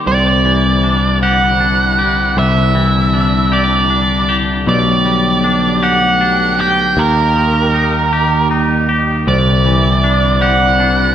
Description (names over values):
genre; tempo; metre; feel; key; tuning
post-rock; 52 BPM (dotted quarters); 6/8; straight; C lydian; A4 = 436 Hz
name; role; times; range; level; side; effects
rich symphonic string section; sustained chords; 0.0-11.1 s; D3 to G4; -23 LUFS; left 1 dB; none
twangy electric guitar; arpeggios; 0.0-11.1 s; B2 to G4; -19 LUFS; left 3 dB; none
octave-fuzz lead guitar; melody; 0.1-11.1 s; Bb4 to G5; -14 LUFS; right 3 dB; distortion
picked electric bass; bass; 0.1-11.1 s; B1 to Eb2; -15 LUFS; left 1 dB; none
vibraphone with soft mallets; arpeggios; 9.3-10.8 s; C5 to E5; -21 LUFS; right 2 dB; none
room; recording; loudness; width
wet scoring stage reverb, RT60 1.5 s; recorded in a church or concert hall; -11 LUFS; side -10 dB against mid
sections
0.0-11.1 A section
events
none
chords
0.1 Cadd9; 4.7 Gadd9/B; 7.0 Eb; 9.3 Cadd9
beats
| 0.07 1.22 | 2.38 3.53 | 4.68 5.83 | 6.98 8.13 | 9.28 10.43